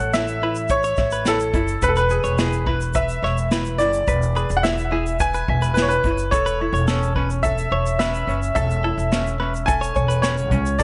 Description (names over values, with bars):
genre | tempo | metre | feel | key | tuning
acoustic pop | 107 BPM | 4/4 | straight | A major | A4 = 440 Hz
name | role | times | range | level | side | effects
bright upright piano | melody | 0.0-10.8 s | A4 to G#5 | -25 LUFS | equal | analog delay
tenor ukulele | accompaniment | 0.0-10.8 s | C#4 to E5 | -29 LUFS | equal | analog delay
upright bass | bass | 0.0-10.8 s | E1 to D2 | -26 LUFS | equal | none
unplugged drum kit | drums | 0.1-10.8 s | kick drum, shaker, snare drum | -28 LUFS | equal | analog delay
egg shaker | percussion | 0.1-10.8 s | none | -45 LUFS | equal | none
direct-recorded clean electric guitar | arpeggios | 0.4-10.4 s | G#4 to C#5 | -32 LUFS | equal | none
room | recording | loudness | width
light reverb | echo-heavy mix, nothing above 10.9 kHz | -21 LUFS | mono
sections
0.0-10.8 A section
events
none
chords
0.0 A; 1.8 E; 6.3 A/E